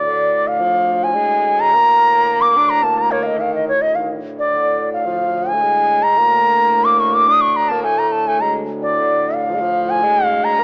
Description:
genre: indian classical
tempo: 108 BPM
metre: 4/4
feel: straight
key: D raga todi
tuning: A4 = 440 Hz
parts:
  - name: bright reedy bansuri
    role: melody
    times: 0.0-10.6 s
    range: C#5 to Eb6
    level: -17 LUFS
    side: equal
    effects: cassette tape
  - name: warm tenor saxophone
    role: second line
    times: 0.0-10.6 s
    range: D3 to D4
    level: -26 LUFS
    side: equal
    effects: cassette tape
  - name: pedal harmonium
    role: drone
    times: 0.0-10.6 s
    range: D2 to A2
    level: -30 LUFS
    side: equal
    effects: cassette tape
room: moderate spring reverb, RT60 2.5 s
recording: home recording on cassette, small speaker sound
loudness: -16 LUFS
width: mono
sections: 0.0-10.6 A section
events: none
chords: none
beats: 0.46 1.02 | 1.58 2.14 2.70 3.26 | 3.82 4.37 4.93 5.48 | 6.04 6.59 7.14 7.69 | 8.24 8.79 9.34 9.89 | 10.44

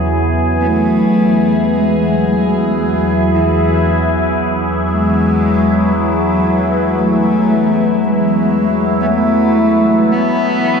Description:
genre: ambient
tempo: 57 BPM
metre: 4/4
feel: straight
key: unclear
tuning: A4 = 440 Hz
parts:
  - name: dark cello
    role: melody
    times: 0.0-10.8 s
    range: C#3 to B3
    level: -16 LUFS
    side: equal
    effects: tape echo
  - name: evolving wavetable pad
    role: sustained chords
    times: 0.0-10.8 s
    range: E2 to A5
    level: -14 LUFS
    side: equal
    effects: phaser, built-in reverb
  - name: bowed-like drone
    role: drone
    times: 0.1-10.8 s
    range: E3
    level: -29 LUFS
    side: equal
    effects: none
room: wet cathedral reverb, RT60 5.5 s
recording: dark, warm production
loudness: -11 LUFS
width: side -6 dB against mid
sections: 0.0-10.8 A section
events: none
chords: 0.0 Asus2/E; 9.1 Esus4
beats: | 0.67 1.73 2.78 3.83 | 4.88 5.94 6.99 8.04 | 9.09 10.15

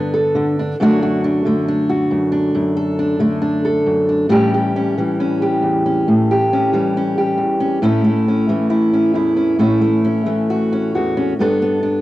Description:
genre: folk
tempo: 68 BPM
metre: 4/4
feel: straight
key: unclear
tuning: A4 = 441 Hz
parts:
  - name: fingerpicked steel-string acoustic guitar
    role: solo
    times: 0.0-12.0 s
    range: E2 to A4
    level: -14 LUFS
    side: equal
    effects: none
room: light reverb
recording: home recording on cassette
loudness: -14 LUFS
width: side -16 dB against mid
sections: 0.0-7.8 A section; 7.8-12.0 B section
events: none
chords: 0.0 Gadd9; 0.8 D/F#; 4.3 A7; 7.8 A; 11.4 Gadd9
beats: | 0.79 1.67 2.55 3.43 | 4.32 5.20 6.08 6.96 | 7.85 8.73 9.61 10.50 | 11.38

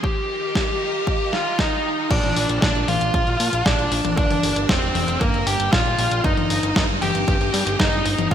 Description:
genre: italo disco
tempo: 116 BPM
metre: 4/4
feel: straight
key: Bb major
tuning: A4 = 438 Hz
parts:
  - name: fuzz lead guitar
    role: melody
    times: 0.0-8.3 s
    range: Bb3 to G5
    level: -22 LUFS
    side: equal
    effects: distortion, ping-pong delay, shimmer reverb
  - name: phased string machine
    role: sustained chords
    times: 0.0-8.3 s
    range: Eb3 to C5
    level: -28 LUFS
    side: right 1 dB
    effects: ensemble chorus, phaser, shimmer reverb
  - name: electronic kick drum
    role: drums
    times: 0.0-8.3 s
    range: none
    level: -23 LUFS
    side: equal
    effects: none
  - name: clean 12-bit digital drum machine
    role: drums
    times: 0.6-8.3 s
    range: crash cymbal, hi-hat, snare drum, toms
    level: -24 LUFS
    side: left 1 dB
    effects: gated reverb
  - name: fat analog bass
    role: bass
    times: 2.1-8.3 s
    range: F1 to Bb2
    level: -25 LUFS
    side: equal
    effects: none
room: moderate lush hall reverb, RT60 2.1 s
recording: bright 1980s-style digital production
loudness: -18 LUFS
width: side -9 dB against mid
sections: 0.0-2.1 A section; 2.1-8.3 B section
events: none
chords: 0.0 Ebadd9; 2.1 Bb; 4.2 Gm; 6.2 Cm7/G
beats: | 0.04 0.55 1.07 1.59 | 2.11 2.62 3.14 3.66 | 4.17 4.69 5.21 5.73 | 6.24 6.76 7.28 7.79 | 8.31

